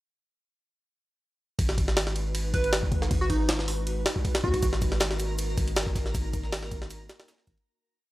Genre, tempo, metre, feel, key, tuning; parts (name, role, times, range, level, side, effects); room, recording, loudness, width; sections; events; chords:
drum and bass, jungle; 158 BPM; 4/4; straight; G# minor; A4 = 440 Hz
long sustained 808-style bass; bass; 1.6-7.6 s; G#1 to D#2; -30 LUFS; equal
jungle sampler-style drum kit; drums; 1.6-7.7 s; hi-hat, kick drum, ride cymbal, snare drum; -27 LUFS; equal
plucky unison lead; melody; 2.5-4.7 s; D#4 to B4; -31 LUFS; right 1 dB; dub echo
breakbeat sampler-style drum kit; drums; 4.6-7.6 s; hi-hat, shaker, snare drum; -40 LUFS; equal
twinkling granular texture; texture; 5.2-7.7 s; A#4 to A#5; -44 LUFS; left 2 dB; built-in reverb
digital ambience; dry, gritty hardware recording; -25 LUFS; side -17 dB against mid
1.6-7.7 drop
drop 1.6-7.7; fade-out 5.6-7.7
1.6 G#m7; 4.6 D#m/G#